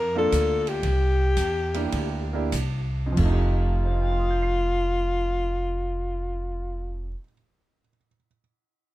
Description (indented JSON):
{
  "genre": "jazz, small-group swing and bop",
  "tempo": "90-123 BPM",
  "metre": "4/4",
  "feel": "swing 68% on 8ths",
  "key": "F mixolydian",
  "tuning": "A4 = 440 Hz",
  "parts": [
    { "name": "breathy alto saxophone", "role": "melody", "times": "0.0-7.1 s", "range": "F4 to Bb4", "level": "-27 LUFS", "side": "left 3 dB", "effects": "none" },
    { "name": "upright bass", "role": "bass", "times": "0.0-7.1 s", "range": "F1 to F2", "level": "-25 LUFS", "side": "right 1 dB", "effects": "none" },
    { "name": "warm baby grand piano", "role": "accompaniment", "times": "0.2-8.4 s", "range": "F2 to C7", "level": "-30 LUFS", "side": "right 3 dB", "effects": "none" },
    { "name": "open jazz drum kit", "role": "drums", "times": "0.3-3.4 s", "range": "crash cymbal, hi-hat, kick drum, ride cymbal", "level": "-34 LUFS", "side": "right 1 dB", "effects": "none" }
  ],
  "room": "little or no reverb",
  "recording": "dark, warm production",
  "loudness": "-22 LUFS",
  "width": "side -16 dB against mid",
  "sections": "0.0-3.2 A section; 3.2-8.5 B section",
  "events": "slowing down 0.0-3.2",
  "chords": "0.0 Gm7 (rootless); 0.8 C7; 3.2 F9"
}